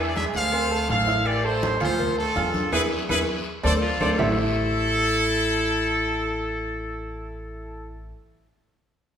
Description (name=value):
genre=latin, salsa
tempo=164 BPM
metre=4/4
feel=straight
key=A minor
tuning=A4 = 440 Hz
part: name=bright trumpet section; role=melody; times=0.0-7.9 s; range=C4 to F5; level=-25 LUFS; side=equal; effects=none
part: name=warm grand piano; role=accompaniment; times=0.0-8.1 s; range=F3 to F6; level=-28 LUFS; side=right 3 dB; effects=none
part: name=upright bass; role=bass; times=0.0-8.1 s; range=A1 to E2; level=-29 LUFS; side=equal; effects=none
part: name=agogo bells and timbales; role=percussion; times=0.2-4.3 s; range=none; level=-34 LUFS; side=right 4 dB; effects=none
part: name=congas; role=percussion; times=0.2-4.3 s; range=none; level=-32 LUFS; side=left 1 dB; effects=none
part: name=cowbell and bongos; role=percussion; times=0.2-4.3 s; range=none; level=-34 LUFS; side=left 3 dB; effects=none
part: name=guiro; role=percussion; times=0.2-4.3 s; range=none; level=-39 LUFS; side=left 3 dB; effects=none
part: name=claves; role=percussion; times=0.5-4.3 s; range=none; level=-38 LUFS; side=left 2 dB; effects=none
part: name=clear baritone saxophone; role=second line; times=3.6-7.9 s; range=D4 to F4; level=-28 LUFS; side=left 2 dB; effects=none
room=wet recital hall reverb, RT60 1.4 s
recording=recorded in a church or concert hall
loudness=-21 LUFS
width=side -8 dB against mid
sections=0.0-4.2 A section; 4.2-7.1 B section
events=drum fill 2.7-4.2; band accent 2.7-4.2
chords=0.0 E7; 0.5 Dm7; 1.3 Am7; 2.0 Dm7; 2.7 E; 3.5 Dm7; 4.2 Am7